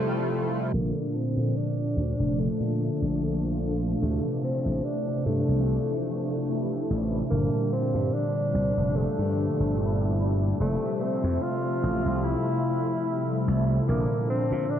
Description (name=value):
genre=vaporwave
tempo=73 BPM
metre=4/4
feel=swing 55% on 16ths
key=unclear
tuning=A4 = 440 Hz
part: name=breathy tenor saxophone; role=melody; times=0.0-14.8 s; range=A3 to F4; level=-31 LUFS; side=equal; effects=tape echo
part: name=mellow synth brass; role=accompaniment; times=0.0-14.8 s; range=Bb2 to E5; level=-27 LUFS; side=equal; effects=ensemble chorus
part: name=slap bass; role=bass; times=0.7-14.7 s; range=F1 to Bb2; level=-27 LUFS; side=equal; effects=none
room=wet cathedral reverb, RT60 5.5 s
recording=dreamy mix soaked in reverb, cassette tape, low-pass filter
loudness=-24 LUFS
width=side -10 dB against mid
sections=0.7-14.8 A section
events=break 0.0-0.7; filter sweep 0.7-14.8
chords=0.0 Fmaj9; 0.7 Bbmaj7; 4.0 Dm9; 7.3 Gm7; 10.6 Fmaj9; 13.9 Bbmaj7